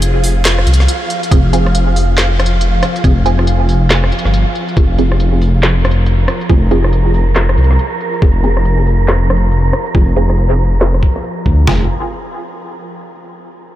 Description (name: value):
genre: deep dubstep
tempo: 139 BPM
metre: 4/4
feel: swing 61% on 16ths, half-time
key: F minor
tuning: A4 = 440 Hz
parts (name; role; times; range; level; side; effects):
- dark detuned saw bass; bass; 0.0-11.9 s; F1 to D2; -12 LUFS; equal; none
- deep house drum kit; drums; 0.0-11.7 s; handclaps, hi-hat, rim click, snare drum; -19 LUFS; equal; low-pass filter on hats, studio reverb, low-pass filter on snare
- wind-like tuned noise texture; texture; 0.0-11.7 s; F3 to Bb4; -21 LUFS; right 2 dB; built-in reverb
- filtered dub chord stab; stabs; 1.3-11.8 s; C4 to Ab4; -22 LUFS; right 2 dB; phaser, vintage 12-bit sampler grit, dub echo
- trip hop sampler-style drum kit; drums; 1.3-11.8 s; kick drum, snare drum, toms; -12 LUFS; equal; studio reverb
room: light reverb, digital ambience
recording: none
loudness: -10 LUFS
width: side -13 dB against mid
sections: 0.0-11.7 A section; 11.7-13.4 B section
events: filter sweep on drum 0.0-11.7; filter sweep on synth stab 0.0-11.7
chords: 0.0 Fm